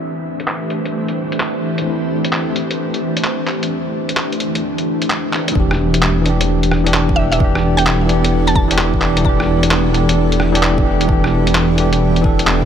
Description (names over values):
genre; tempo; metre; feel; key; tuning
future garage; 130 BPM; 4/4; swing 66% on 16ths; E minor; A4 = 436 Hz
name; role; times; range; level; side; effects
bell-like tine electric piano; accompaniment; 0.0-12.7 s; E3 to A4; -19 LUFS; right 1 dB; medium stereo tremolo, sidechain pumping, ping-pong delay
granular cloud pad; sustained chords; 0.0-12.7 s; E3 to G5; -21 LUFS; left 1 dB; built-in reverb, sidechain pumping
lo-fi sampler-style drum kit; drums; 0.4-12.6 s; handclaps, hi-hat, rim click; -20 LUFS; equal; small room ambience
dark detuned saw bass; bass; 5.6-12.7 s; E1; -17 LUFS; equal; tube saturation, sidechain pumping
electronic kick drum; drums; 5.6-12.7 s; none; -17 LUFS; equal; small room ambience
mallet-like synth pluck; melody; 7.2-8.7 s; E5 to A5; -23 LUFS; right 1 dB; chorus, ping-pong delay
room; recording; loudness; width
light reverb; low-pass filter; -13 LUFS; side -8 dB against mid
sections
0.0-5.6 A section; 5.6-12.7 B section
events
filter sweep 0.0-5.6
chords
0.0 Am/E; 5.6 Em7